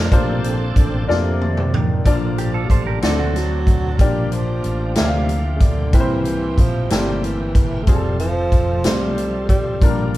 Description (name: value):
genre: slow gospel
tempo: 62 BPM (dotted quarters)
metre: 6/8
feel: straight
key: Bb major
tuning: A4 = 440 Hz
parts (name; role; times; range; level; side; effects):
- clear grand piano; accompaniment; 0.0-10.2 s; C3 to A5; -24 LUFS; left 2 dB; none
- bright tonewheel organ; sustained chords; 0.0-10.2 s; F3 to A4; -31 LUFS; right 2 dB; slow rotary speaker, chorus vibrato
- fingered electric bass; bass; 0.0-10.2 s; F1 to F2; -22 LUFS; equal; none
- dark French horn section; sustained chords; 0.1-2.1 s; Bb3 to A4; -34 LUFS; right 3 dB; none
- swinging big-band drum kit; drums; 0.1-10.2 s; hi-hat, kick drum, snare drum, toms; -18 LUFS; equal; none
- breathy tenor saxophone; melody; 1.1-10.2 s; C3 to A3; -25 LUFS; right 1 dB; none
- semi-hollow electric guitar; second line; 2.4-4.0 s; D4 to C5; -27 LUFS; right 7 dB; none
room: light reverb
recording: band playing live in one room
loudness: -16 LUFS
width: side -16 dB against mid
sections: 0.1-2.1 A section; 2.1-10.2 B section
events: tonewheel organ solo 0.1-2.1; drum fill 1.1-2.1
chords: 0.1 Bbmaj9; 2.1 Bbmaj7; 3.0 D7; 4.0 Gm7; 5.9 C7; 7.9 F